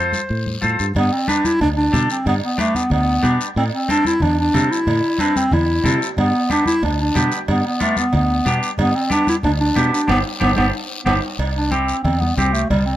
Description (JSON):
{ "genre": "latin, cumbia", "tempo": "184 BPM", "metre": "4/4", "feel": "straight", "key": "unclear", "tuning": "A4 = 444 Hz", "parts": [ { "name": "mellow clarinet", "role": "melody", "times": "0.0-13.0 s", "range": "G3 to C5", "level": "-19 LUFS", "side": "equal", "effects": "none" }, { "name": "clean electric guitar", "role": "accompaniment", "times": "0.0-12.6 s", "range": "B3 to C5", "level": "-22 LUFS", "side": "equal", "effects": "none" }, { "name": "fingered electric bass", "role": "bass", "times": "0.0-13.0 s", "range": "G1 to C3", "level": "-20 LUFS", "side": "equal", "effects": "none" }, { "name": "congas", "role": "percussion", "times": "0.1-12.9 s", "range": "none", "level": "-26 LUFS", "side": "left 1 dB", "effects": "none" }, { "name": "guiro", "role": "percussion", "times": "0.1-13.0 s", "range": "none", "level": "-31 LUFS", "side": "left 6 dB", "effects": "none" }, { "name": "cowbell and timbales", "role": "percussion", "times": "1.0-12.9 s", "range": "none", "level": "-28 LUFS", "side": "right 5 dB", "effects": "none" } ], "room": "little or no reverb", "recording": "close, detailed microphones", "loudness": "-16 LUFS", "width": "side -13 dB against mid", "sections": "1.0-11.4 A section; 11.4-13.0 B section", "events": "band accent 10.1-11.4; drum fill 10.9-11.4", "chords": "0.0 F; 1.0 G; 3.6 Am; 6.2 G; 11.4 C" }